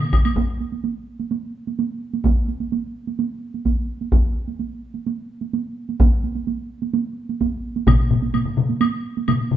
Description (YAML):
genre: japanese traditional, taiko drum ensemble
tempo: 128 BPM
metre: 4/4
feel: straight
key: none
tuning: none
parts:
  - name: taiko ensemble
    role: percussion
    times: 0.1-8.0 s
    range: none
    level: -19 LUFS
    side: equal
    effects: none
  - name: woodblock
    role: percussion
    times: 0.1-0.4, 7.9-9.4 s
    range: none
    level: -30 LUFS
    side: left 4 dB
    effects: none
  - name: solo taiko drums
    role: percussion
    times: 0.3-9.4 s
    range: none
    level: -24 LUFS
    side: right 7 dB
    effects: none
  - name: taiko ensemble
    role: percussion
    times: 7.9-9.6 s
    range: none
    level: -21 LUFS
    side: left 4 dB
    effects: none
room: wet large studio reverb, RT60 1.1 s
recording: band playing live in one room, nothing above 7.9 kHz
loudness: -20 LUFS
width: side -11 dB against mid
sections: 0.4-9.6 A section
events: none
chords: none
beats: | 0.36 0.83 1.30 1.77 | 2.24 2.71 3.18 3.65 | 4.12 4.59 5.06 5.53 | 6.00 6.47 6.94 7.41 | 7.88 8.35 8.81 9.28